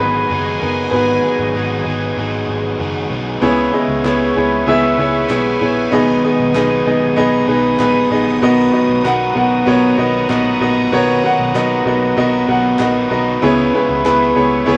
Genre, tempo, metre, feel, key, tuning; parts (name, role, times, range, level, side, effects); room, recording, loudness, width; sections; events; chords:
piano-driven pop; 96 BPM; 4/4; straight; A4 = 440 Hz
clear concert grand piano; accompaniment; 0.0-14.8 s; B2 to F#5; -16 LUFS; equal
sweeping resonant pad; sustained chords; 0.0-14.8 s; B3 to D#6; -27 LUFS; equal; chorus
overdriven electric guitar; riff; 0.0-14.8 s; G#2 to B4; -24 LUFS; equal
vintage muted picked electric bass; bass; 0.0-14.8 s; F#1 to C#2; -28 LUFS; equal
group handclap; percussion; 4.1-14.2 s; -34 LUFS; equal
wet large studio reverb, RT60 0.8 s; -15 LUFS; mono
0.0-3.4 A section; 3.4-14.8 B section
grand piano solo 0.0-3.4
0.0 G#m7; 3.4 C#m7; 5.9 G#m/B; 8.4 Bmaj7; 13.4 C#m7